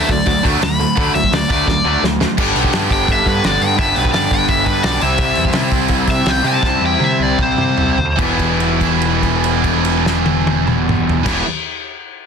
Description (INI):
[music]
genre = punk rock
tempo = 145-171 BPM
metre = 4/4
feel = straight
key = E minor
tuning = A4 = 440 Hz
[part]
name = cranked stack guitar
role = melody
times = 0.0-8.2 s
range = B4 to B5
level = -18 LUFS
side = left 3 dB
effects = overdrive
[part]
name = distorted electric guitar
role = riff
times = 0.0-11.5 s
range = E2 to D4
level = -19 LUFS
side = left 13 dB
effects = distortion
[part]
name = tight distorted guitar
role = riff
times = 0.0-11.4 s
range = G2 to G4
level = -19 LUFS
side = right 19 dB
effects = distortion
[part]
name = growling picked electric bass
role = bass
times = 0.0-11.4 s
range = E1 to C3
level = -22 LUFS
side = equal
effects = overdrive
[part]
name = loose indie drum kit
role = drums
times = 0.1-11.4 s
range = crash cymbal, hi-hat, kick drum, snare drum, toms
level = -20 LUFS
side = equal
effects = soft clipping on snare
[sound]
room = little or no reverb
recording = dense, heavily limited modern master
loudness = -13 LUFS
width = side -6 dB against mid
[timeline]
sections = 0.0-2.4 A section; 2.4-8.2 B section; 8.2-11.5 C section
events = overdriven electric guitar solo 0.0-2.4, 2.4-8.2; drum fill 1.7-2.4, 6.6-8.2; slowing down 5.2-8.2; held note 8.2-11.2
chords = 0.0 D; 2.4 G; 5.0 C; 8.2 Em